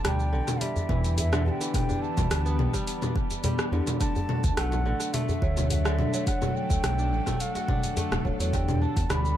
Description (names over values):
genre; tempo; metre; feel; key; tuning
organic downtempo; 106 BPM; 4/4; straight; E minor; A4 = 440 Hz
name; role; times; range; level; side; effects
bansuri; melody; 0.0-9.4 s; E5 to B5; -34 LUFS; right 1 dB; vintage 12-bit sampler grit, tape echo
tine electric piano; accompaniment; 0.0-9.4 s; E3 to A4; -37 LUFS; left 4 dB; overdrive, fast stereo tremolo, sidechain pumping, tape echo
bowed-like drone; sustained chords; 0.0-9.4 s; D3 to E5; -38 LUFS; left 2 dB; built-in reverb, sidechain pumping
kora; arpeggios; 0.0-9.4 s; D3 to F#4; -34 LUFS; right 1 dB; tape echo
round analog bass; bass; 0.0-9.4 s; D1 to E2; -27 LUFS; equal; none
deep house drum kit; drums; 0.0-9.4 s; congas, hi-hat, rim click, shaker; -30 LUFS; equal; tape echo
djembe; percussion; 0.6-8.8 s; none; -34 LUFS; equal; tape echo
electronic kick drum; drums; 0.9-9.1 s; none; -30 LUFS; equal; none
room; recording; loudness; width
light reverb; echo-heavy mix; -24 LUFS; side -11 dB against mid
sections
0.0-9.4 A section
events
none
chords
0.0 Em7; 4.0 D; 8.5 Em7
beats
0.04 0.61 1.18 | 1.74 2.31 2.87 3.44 | 4.00 4.57 5.14 5.70 | 6.27 6.84 7.40 7.97 | 8.53 9.10